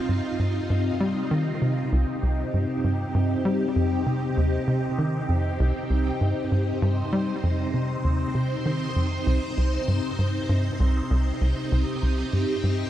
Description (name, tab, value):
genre	ambient, sequencer-driven space music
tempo	98 BPM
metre	4/4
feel	straight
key	C minor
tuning	A4 = 440 Hz
part	phased string machine	sustained chords	0.0-12.9 s	C3 to C5	-27 LUFS	equal	ensemble chorus, phaser
part	tight sequencer bass	riff	0.1-12.8 s	C2 to G3	-24 LUFS	equal	lush chorus, tape echo
room	moderate huge ambient reverb, RT60 7.5 s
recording	none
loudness	-22 LUFS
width	side -12 dB against mid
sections	0.0-1.9 A section; 1.9-12.9 B section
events	none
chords	0.0 Cm